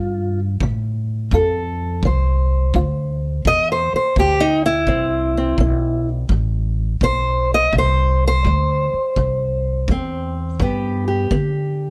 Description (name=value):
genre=acoustic country blues, solo or duo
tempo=84 BPM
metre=4/4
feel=swing 65% on 8ths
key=C major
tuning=A4 = 440 Hz
part: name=fingerpicked steel-string acoustic guitar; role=melody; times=0.0-11.9 s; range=G2 to Eb5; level=-22 LUFS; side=equal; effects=none
part: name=upright bass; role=bass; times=0.0-11.9 s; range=A1 to D3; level=-22 LUFS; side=equal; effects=none
part: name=kick drum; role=drums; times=0.6-11.5 s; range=none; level=-26 LUFS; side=equal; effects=none
room=little or no reverb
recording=none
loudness=-19 LUFS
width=mono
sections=0.0-11.9 A section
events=steel-string acoustic guitar solo 0.0-11.9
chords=0.0 F; 4.9 C; 10.6 G